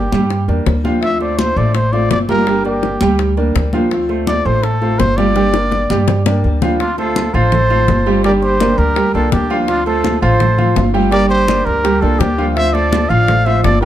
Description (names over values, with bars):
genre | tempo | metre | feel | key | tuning
latin, Cuban son and guajira | 166 BPM | 4/4 | straight | D minor | A4 = 440 Hz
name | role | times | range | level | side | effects
breathy trumpet | melody | 0.0-13.8 s | F4 to F5 | -18 LUFS | equal | tape echo
nylon-string guitar | accompaniment | 0.0-13.8 s | D3 to G4 | -22 LUFS | left 3 dB | none
clear concert grand piano | arpeggios | 0.0-13.8 s | F3 to G5 | -18 LUFS | right 4 dB | none
upright bass | bass | 0.0-13.8 s | G1 to G2 | -17 LUFS | equal | none
congas | percussion | 0.1-13.8 s | none | -22 LUFS | left 1 dB | none
bongos | percussion | 0.3-13.8 s | none | -22 LUFS | left 6 dB | none
breathy bright jazz flute | second line | 6.8-13.8 s | D4 to D5 | -25 LUFS | right 4 dB | none
room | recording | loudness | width
moderate studio reverb, RT60 0.6 s | dark, warm production | -12 LUFS | side -12 dB against mid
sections
0.0-6.8 A section; 6.8-13.8 B section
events
drum fill 5.4-6.8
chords
0.0 Gm; 1.0 Dm7; 2.5 Gm; 3.9 Dm7; 5.4 Gm; 6.8 Dm7; 8.2 Gm; 9.7 Dm7; 11.1 Gm; 12.6 Dm7